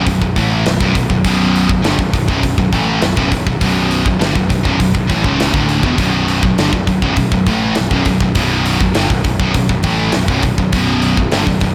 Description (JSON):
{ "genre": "heavy metal", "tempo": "101 BPM", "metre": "4/4", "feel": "straight", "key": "B minor", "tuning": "A4 = 440 Hz", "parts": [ { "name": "scooped high-gain guitar", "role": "riff", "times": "0.0-11.7 s", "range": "B1 to A3", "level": "-20 LUFS", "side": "equal", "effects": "distortion" }, { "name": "sludgy distorted guitar", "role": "riff", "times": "0.0-11.7 s", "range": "B1 to A3", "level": "-19 LUFS", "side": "equal", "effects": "overdrive" }, { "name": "fuzz picked electric bass", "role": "bass", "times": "0.0-11.7 s", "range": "B0 to A1", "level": "-23 LUFS", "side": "equal", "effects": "overdrive" }, { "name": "tight metal drum kit", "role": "drums", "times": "0.1-11.7 s", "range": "hi-hat, kick drum, snare drum", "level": "-20 LUFS", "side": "equal", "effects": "none" } ], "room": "wet scoring stage reverb, RT60 2.0 s", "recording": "big arena sound", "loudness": "-14 LUFS", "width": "mono", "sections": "0.0-11.7 A section", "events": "none", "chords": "0.0 Bm" }